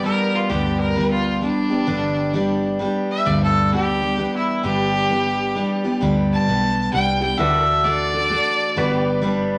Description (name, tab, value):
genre	country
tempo	131 BPM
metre	3/4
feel	swing 63% on 8ths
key	G major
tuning	A4 = 441 Hz
part	clear fiddle	second line	0.0-9.2 s	D4 to A5	-24 LUFS	equal	none
part	picked steel-string acoustic guitar	accompaniment	0.0-9.6 s	G2 to B4	-23 LUFS	equal	none
part	pedal steel guitar	sustained chords	0.0-9.6 s	B3 to D5	-31 LUFS	equal	none
part	vintage muted fingered electric bass	bass	0.0-9.6 s	G1 to D2	-29 LUFS	equal	none
room	wet large studio reverb, RT60 1.0 s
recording	none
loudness	-20 LUFS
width	mono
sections	0.0-9.6 A section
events	fiddle solo 0.0-9.6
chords	0.0 G; 7.4 D; 8.8 G